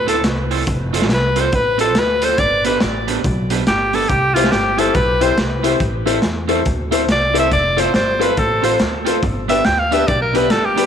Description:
ska; 140 BPM; 4/4; swing 62% on 8ths; A4 = 441 Hz
edgy alto saxophone; melody; 0.0-10.9 s; F4 to G5; -18 LUFS; equal; tape echo
upright bass; bass; 0.0-10.9 s; F1 to E2; -23 LUFS; equal
electric guitar at the edge of break-up; accompaniment; 0.1-10.9 s; B3 to C5; -23 LUFS; right 10 dB; tape echo
crunchy breakbeat drum kit; drums; 0.1-10.8 s; hi-hat, kick drum, snare drum; -21 LUFS; equal
warm upright piano; stabs; 4.4-10.9 s; D4 to C5; -21 LUFS; left 11 dB
moderate plate reverb, RT60 2.4 s; 1960s-style stereo with parts hard left and right; -14 LUFS; side -8 dB against mid
0.0-10.9 A section
alto saxophone solo 0.0-10.9
0.0 Am; 0.7 F; 2.4 G; 4.1 C; 5.8 Am; 7.5 F; 9.2 G

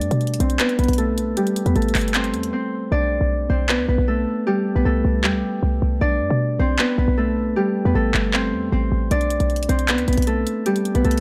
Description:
hip hop, trap; 155 BPM; 4/4; half-time; B phrygian; A4 = 441 Hz
Celtic harp; melody; 0.0-11.2 s; G3 to D5; -23 LUFS; equal; low-pass filter
short 808-style bass; bass; 0.0-11.2 s; G1 to B2; -23 LUFS; equal
trap drum kit; drums; 0.0-11.2 s; handclaps, hi-hat; -26 LUFS; equal
light reverb; dark, warm production; -20 LUFS; mono
0.0-11.2 A section
filter sweep on harp 0.0-2.9; break 2.5-2.9; hi-hats muted 2.9-9.1
0.0 Bm; 1.4 Am; 2.9 Bm; 4.5 C5; 6.0 Bm; 7.6 Am; 9.1 Bm; 10.7 C5

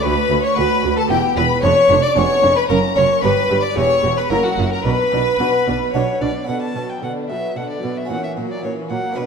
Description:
classical, baroque-style concerto movement with solo episodes; 112 BPM; 3/4; straight; B minor; A4 = 440 Hz
clear chamber violin section; melody; 0.0-9.3 s; E4 to D6; -23 LUFS; left 9 dB
rich violin; melody; 0.0-9.3 s; F#4 to A5; -21 LUFS; equal
clear symphonic violin section; second line; 0.0-9.3 s; A#3 to D5; -21 LUFS; left 1 dB
harpsichord; accompaniment; 0.0-9.3 s; D2 to A#4; -26 LUFS; right 2 dB
warm studio viola section; accompaniment; 0.0-9.3 s; D3 to G4; -26 LUFS; right 3 dB
clear chamber cello section; bass; 0.0-9.3 s; D2 to B2; -24 LUFS; right 3 dB
rich studio double bass section; bass; 0.0-6.3 s; E1 to D2; -24 LUFS; right 4 dB
moderate concert hall reverb, RT60 1.9 s; -15 LUFS; side -6 dB against mid
0.0-6.5 A section; 6.5-9.3 B section
0.0 D6; 1.1 Em; 1.6 Fdim7; 2.7 F#; 3.2 G; 3.8 C#dim/E; 4.3 F#7; 4.8 Bm; 8.1 F#7/A#

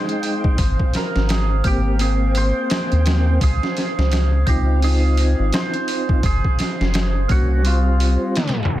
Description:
trip hop; 85 BPM; 4/4; swing 60% on 16ths; A4 = 440 Hz
hammered dulcimer; melody; 0.0-8.8 s; F4 to C5; -27 LUFS; right 2 dB; tape echo
percussive tonewheel organ; accompaniment; 0.0-8.7 s; G3 to G5; -25 LUFS; equal; chorus vibrato, slow rotary speaker, harmonic tremolo, vintage 12-bit sampler grit, tape echo
deep dark ambient pad; sustained chords; 0.0-8.8 s; C5; -30 LUFS; right 2 dB; chorus, built-in reverb
bowed-like drone; texture; 0.0-8.8 s; F5; -41 LUFS; right 1 dB
trip hop sampler-style drum kit; drums; 0.1-8.8 s; hi-hat, kick drum, snare drum; -21 LUFS; equal; overdrive
round analog bass; bass; 0.6-8.8 s; Gb1 to Eb2; -17 LUFS; equal
little or no reverb; dense, heavily limited modern master, tape stop; -16 LUFS; side -14 dB against mid
0.0-8.8 A section
tape stop 8.4-8.8
0.0 Fm7; 0.6 Abmaj7; 3.4 Dbmaj7; 6.2 Gb; 7.6 Csus4

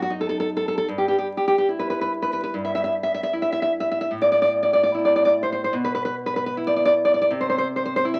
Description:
romantic piece for solo classical guitar; 63-84 BPM; 4/4; rubato; E minor; A4 = 440 Hz
nylon-string guitar; solo; 0.0-8.2 s; F#2 to E5; -22 LUFS; equal
moderate studio reverb, RT60 0.5 s; very old 78 rpm record, vinyl crackle; -22 LUFS; mono
0.0-8.2 A section
0.0 F#m6; 0.9 Em/G; 4.1 A5; 5.7 E5/B; 7.3 C

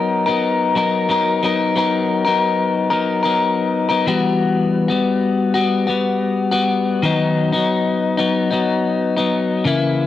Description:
indie pop; 91 BPM; 4/4; straight; B major; A4 = 444 Hz
clean electric guitar; solo; 0.0-10.1 s; C#3 to A#4; -16 LUFS; left 3 dB; wide subtle chorus, vibrato effect, cassette tape
moderate studio reverb, RT60 0.5 s; home recording on cassette; -16 LUFS; side -12 dB against mid
0.0-1.8 A section; 1.8-10.1 B section
0.0 Bmaj7; 4.1 Emadd9; 7.0 B/D#

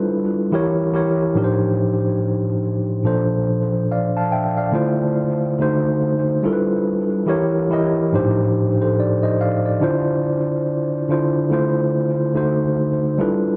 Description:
hip hop; 71 BPM; 4/4; swing 60% on 16ths; D minor; A4 = 439 Hz
mellow tine electric piano; solo; 0.0-13.6 s; G#2 to A5; -19 LUFS; equal; tape echo
light reverb; cassette tape; -19 LUFS; mono
0.0-11.5 A section; 11.5-13.6 B section
0.0 G13; 0.5 Edim7; 1.4 F13/A; 3.1 Bbmaj7; 4.8 Dm7; 5.6 D7b9; 6.4 G13; 7.3 Edim7; 8.1 F13/A; 9.8 Dm7; 12.4 D7b9

